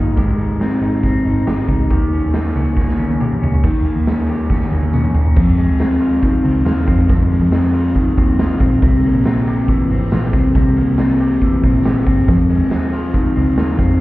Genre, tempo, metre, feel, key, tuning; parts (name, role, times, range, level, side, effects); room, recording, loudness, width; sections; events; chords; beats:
jangly indie pop; 139 BPM; 4/4; straight; A4 = 442 Hz
electric guitar through a small old amp; arpeggios; 0.0-14.0 s; F2 to G4; -17 LUFS; left 1 dB; tape echo
vintage muted picked electric bass; bass; 0.0-14.0 s; G1 to Eb3; -18 LUFS; equal
raw garage drum kit; drums; 0.2-13.9 s; crash cymbal, hi-hat, kick drum, snare drum, toms; -17 LUFS; equal
tambourine; percussion; 3.6-13.9 s; -58 LUFS; right 6 dB
light reverb; heard muffled through a wall, stone room reverb, EQ; -13 LUFS; side -18 dB against mid
0.0-3.6 A section; 3.6-5.4 B section; 5.4-14.0 C section
drum fill 2.8-3.6, 4.5-5.4
0.2 Abmaj7; 1.9 Eb7; 5.4 Fm7; 8.8 C7; 12.3 Fm7
| 0.17 0.61 1.04 1.47 | 1.91 2.34 2.77 3.20 | 3.64 4.07 4.50 4.93 | 5.37 5.80 6.23 6.66 | 7.10 7.53 7.96 8.39 | 8.82 9.26 9.69 10.12 | 10.55 10.98 11.42 11.85 | 12.28 12.71 13.14 13.57 | 14.00